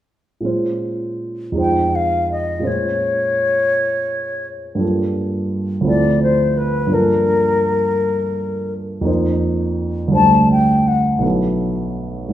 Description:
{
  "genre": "classical, impressionist duo for flute and grand piano",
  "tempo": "56 BPM (dotted quarters)",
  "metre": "6/8",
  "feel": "rubato",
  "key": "unclear",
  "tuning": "A4 = 435 Hz",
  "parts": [
    { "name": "warm concert grand piano", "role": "accompaniment", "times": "0.4-12.3 s", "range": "B1 to C5", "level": "-18 LUFS", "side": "right 2 dB", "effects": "none" },
    { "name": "mellow concert flute", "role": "melody", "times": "1.6-11.2 s", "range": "Bb4 to A5", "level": "-17 LUFS", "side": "left 3 dB", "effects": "none" }
  ],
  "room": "wet recital hall reverb, RT60 1.4 s",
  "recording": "minimal, uncompressed stereo recording",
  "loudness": "-15 LUFS",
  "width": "side -12 dB against mid",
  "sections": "0.5-12.3 A section",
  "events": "none",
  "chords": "0.5 Bbm9; 1.6 Fm7; 2.7 Bbm9; 4.8 Gm9; 5.9 Dm9; 6.9 Gm9; 9.1 F7sus4; 10.1 D7sus4; 11.2 B7sus4"
}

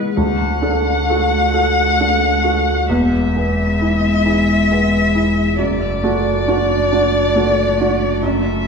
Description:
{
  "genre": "neoclassical piano and strings",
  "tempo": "45 BPM (dotted quarters)",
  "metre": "6/8",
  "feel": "rubato",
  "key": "unclear",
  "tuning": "A4 = 435 Hz",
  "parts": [
    { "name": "felt-muted upright piano", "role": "accompaniment", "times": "0.0-8.7 s", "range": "D2 to B4", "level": "-18 LUFS", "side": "right 2 dB", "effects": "none" },
    { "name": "rich violin", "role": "melody", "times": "0.2-8.7 s", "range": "D5 to F#5", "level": "-18 LUFS", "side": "left 4 dB", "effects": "none" },
    { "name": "rich cello", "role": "second line", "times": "0.2-8.7 s", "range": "G#3 to A3", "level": "-21 LUFS", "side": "left 1 dB", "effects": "none" },
    { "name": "sub bass with octave", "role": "bass", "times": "0.2-8.7 s", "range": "E1 to D2", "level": "-22 LUFS", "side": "equal", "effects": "none" }
  ],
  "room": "wet concert hall reverb, RT60 1.9 s",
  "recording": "recorded in a church or concert hall, small room ambience",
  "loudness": "-14 LUFS",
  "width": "side -5 dB against mid",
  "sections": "0.2-8.7 A section",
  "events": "none",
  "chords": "0.2 D; 2.9 E; 5.6 D/F#"
}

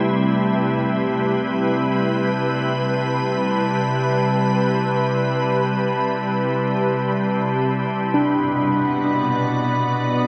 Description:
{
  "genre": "ambient",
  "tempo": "free time",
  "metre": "none",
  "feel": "none",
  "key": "C lydian",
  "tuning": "A4 = 440 Hz",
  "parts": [
    { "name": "soft additive organ-like pad", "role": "sustained chords", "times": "0.0-10.3 s", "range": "B2 to D5", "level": "-21 LUFS", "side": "equal", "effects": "ensemble chorus, built-in reverb" },
    { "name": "tine electric piano", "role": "arpeggios", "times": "0.0-10.3 s", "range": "A3 to D4", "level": "-28 LUFS", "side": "equal", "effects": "overdrive, tape echo" },
    { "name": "glass harmonica", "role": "texture", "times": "0.0-10.3 s", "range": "A5 to B5", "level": "-30 LUFS", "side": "equal", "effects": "none" }
  ],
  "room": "wet cathedral reverb, RT60 5.0 s",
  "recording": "in a vast, echoing space",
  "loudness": "-20 LUFS",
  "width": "mono",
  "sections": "0.0-10.3 A section",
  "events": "fade-in on glass harmonica 0.0-10.3; fade-out on tine electric piano 0.0-10.3",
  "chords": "0.0 Cmaj7; 8.1 Bm"
}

